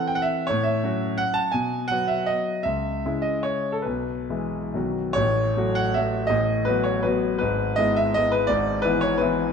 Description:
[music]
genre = classical, romantic triple-time dance for piano with dotted rhythms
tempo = 128-188 BPM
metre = 3/4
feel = rubato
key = E major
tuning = A4 = 441 Hz
[part]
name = clear concert grand piano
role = solo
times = 0.0-9.5 s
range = G#1 to A5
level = -21 LUFS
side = equal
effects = none
[sound]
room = moderate scoring stage reverb, RT60 1.8 s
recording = dark, warm production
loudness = -21 LUFS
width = side -6 dB against mid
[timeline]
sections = 0.0-5.2 A section; 5.2-9.5 B section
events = none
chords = 0.5 F#m7/A; 1.5 B; 2.6 C#m; 3.9 E/B; 4.7 B; 5.2 F#m/A; 6.3 B7/A; 7.4 E/G#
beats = 0.17 | 0.49 0.83 1.20 | 1.54 1.90 2.28 | 2.65 3.03 3.44 | 3.85 4.30 4.75 | 5.17 5.57 5.96 | 6.31 6.68 7.06 | 7.41 7.79 8.15 | 8.49 8.84 9.20

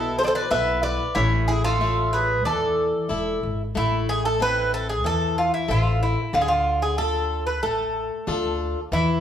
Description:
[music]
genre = greek folk, Greek bouzouki band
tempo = 93 BPM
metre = 4/4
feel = straight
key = D dorian sharp4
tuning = A4 = 441 Hz
[part]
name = Greek bouzouki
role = melody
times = 0.0-9.2 s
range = E4 to E5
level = -23 LUFS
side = right 1 dB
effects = none
[part]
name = Greek bouzouki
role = second line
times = 0.0-3.4 s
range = C#4 to B4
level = -25 LUFS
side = equal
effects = none
[part]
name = picked plugged-in swing-style acoustic guitar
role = accompaniment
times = 0.0-9.2 s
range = B2 to E5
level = -28 LUFS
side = left 3 dB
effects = none
[part]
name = upright bass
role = bass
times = 0.0-9.2 s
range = E1 to E2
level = -26 LUFS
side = equal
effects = none
[sound]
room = wet large studio reverb, RT60 1.1 s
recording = band playing live in one room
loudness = -20 LUFS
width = side -9 dB against mid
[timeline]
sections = 0.0-3.8 A section; 3.8-9.2 A section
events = none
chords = 0.0 Esus4; 1.2 A; 3.8 Am; 6.3 Dm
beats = 0.52 | 1.16 1.81 2.46 3.10 | 3.75 4.40 5.04 5.69 | 6.34 6.98 7.63 8.27 | 8.92

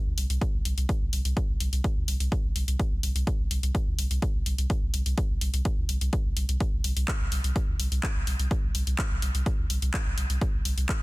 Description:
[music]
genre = melodic techno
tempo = 126 BPM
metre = 4/4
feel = straight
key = unclear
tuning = A4 = 438 Hz
[part]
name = round analog bass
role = bass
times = 0.1-10.8 s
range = C2 to D2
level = -27 LUFS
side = equal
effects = sidechain pumping
[part]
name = house drum kit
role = drums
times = 0.2-11.0 s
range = handclaps, hi-hat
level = -33 LUFS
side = left 1 dB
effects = none
[part]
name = electronic kick drum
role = drums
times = 0.4-11.0 s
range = none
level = -28 LUFS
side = equal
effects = none
[sound]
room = little or no reverb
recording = dense, heavily limited modern master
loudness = -25 LUFS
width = side -21 dB against mid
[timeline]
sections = 0.0-11.0 A section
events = none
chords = none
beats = 0.41 | 0.89 1.37 1.84 2.32 | 2.79 3.27 3.75 4.22 | 4.70 5.18 5.65 6.13 | 6.61 7.08 7.56 8.03 | 8.51 8.99 9.46 9.94 | 10.41 10.89

